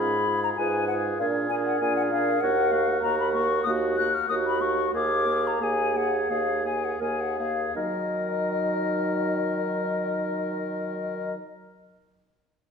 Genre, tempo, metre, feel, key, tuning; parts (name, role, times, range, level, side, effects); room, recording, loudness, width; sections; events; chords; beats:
quick classical-period movement for wind quintet; 78-99 BPM; 4/4; rubato; Eb minor; A4 = 439 Hz
hollow concert flute; melody; 0.0-11.4 s; Eb5 to Gb6; -28 LUFS; left 8 dB
warm oboe; second line; 0.0-11.3 s; Gb4 to Bb4; -32 LUFS; left 2 dB
dark clarinet; accompaniment; 0.0-11.3 s; Eb4 to Cb5; -30 LUFS; right 8 dB
warm French horn; accompaniment; 0.0-11.4 s; Gb3 to F4; -34 LUFS; right 1 dB
mellow bassoon; bass; 0.0-11.3 s; Eb2 to Eb3; -30 LUFS; right 2 dB
wet recital hall reverb, RT60 1.6 s; minimal, uncompressed stereo recording; -23 LUFS; side -6 dB against mid
0.0-7.8 A section; 7.8-10.7 B section
slowing down 1.2-7.8
0.0 Fdim/Ab; 1.2 Bb7; 2.4 Ebm; 4.9 Ebmadd11; 7.8 Ebm
0.59 1.20 1.81 | 2.42 3.03 3.66 4.29 | 4.95 5.61 6.30 7.01 | 7.76 8.49 9.21 9.94